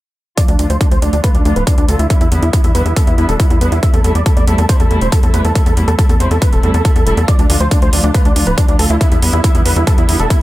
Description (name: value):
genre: uplifting trance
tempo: 139 BPM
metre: 4/4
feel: straight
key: A minor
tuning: A4 = 440 Hz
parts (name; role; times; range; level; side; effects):
- big supersaw lead; melody; 0.4-10.4 s; D4 to E5; -19 LUFS; right 1 dB; sidechain pumping, low-pass filter, digital delay
- dark chamber string section; sustained chords; 0.4-10.4 s; C3 to F4; -21 LUFS; equal; sidechain pumping, low-pass filter
- electronic hi-hat; drums; 0.4-10.4 s; none; -24 LUFS; right 2 dB; sidechain pumping on hats
- electronic kick drum; drums; 0.4-10.4 s; none; -12 LUFS; equal; none
- tight sequencer bass; bass; 0.5-10.3 s; D1 to E2; -15 LUFS; equal; sidechain pumping
room: little or no reverb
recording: none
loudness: -10 LUFS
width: side -16 dB against mid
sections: 0.4-10.4 A section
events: none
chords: 0.4 Dm; 2.1 Em7; 3.8 Am7/E; 7.3 Dm; 9.0 Em7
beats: | 0.38 0.81 1.24 1.67 | 2.10 2.53 2.96 3.40 | 3.83 4.26 4.69 5.12 | 5.55 5.99 6.42 6.85 | 7.28 7.71 8.14 8.58 | 9.01 9.44 9.87 10.30